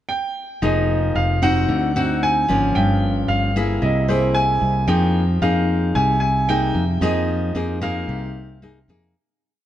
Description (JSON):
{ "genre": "bossa nova", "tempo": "112 BPM", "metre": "4/4", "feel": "straight", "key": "F minor", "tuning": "A4 = 442 Hz", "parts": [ { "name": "warm concert grand piano", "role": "melody", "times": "0.1-8.8 s", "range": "C5 to Ab5", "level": "-22 LUFS", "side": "right 2 dB", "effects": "none" }, { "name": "nylon-string guitar", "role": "accompaniment", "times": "0.6-9.1 s", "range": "G2 to Ab4", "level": "-21 LUFS", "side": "left 2 dB", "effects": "none" }, { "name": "fingered electric bass", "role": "bass", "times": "0.6-9.1 s", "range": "F1 to F2", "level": "-21 LUFS", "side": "right 1 dB", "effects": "none" } ], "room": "moderate plate reverb, RT60 2.8 s", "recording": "heard from further back in the room, nothing above 10.9 kHz", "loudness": "-17 LUFS", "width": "side -12 dB against mid", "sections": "0.0-0.6 pickup bar; 0.6-9.1 A section", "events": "fade-out 7.0-9.1", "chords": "0.0 N.C.; 0.6 Fm7; 1.7 D7b9; 2.7 Gm7b5; 3.8 Caug7; 4.9 Fm11" }